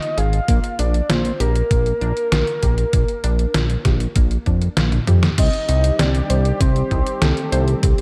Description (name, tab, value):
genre	synthwave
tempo	98 BPM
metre	4/4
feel	straight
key	unclear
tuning	A4 = 444 Hz
part	soft octave-layered synth lead	melody	0.0-8.0 s	G4 to F5	-26 LUFS	equal	chorus, delay
part	unison pluck	arpeggios	0.0-7.9 s	Bb3 to C5	-33 LUFS	equal	delay
part	detuned 8-bit digital drum machine	drums	0.0-8.0 s	crash cymbal, hi-hat, snare drum, toms	-24 LUFS	equal	overdrive
part	fat analog bass	bass	0.2-7.9 s	Ab1 to F2	-21 LUFS	equal	none
part	electronic kick drum	drums	0.5-8.0 s	none	-21 LUFS	equal	overdrive
part	warm analog pad	sustained chords	5.6-8.0 s	Eb3 to G4	-29 LUFS	equal	chorus, sidechain pumping
room	light reverb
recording	dark, warm production, faint mains hum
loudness	-18 LUFS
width	mono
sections	0.0-5.4 A section; 5.4-8.0 B section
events	drum fill 4.9-5.4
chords	0.5 Gm7/Bb; 5.4 Cm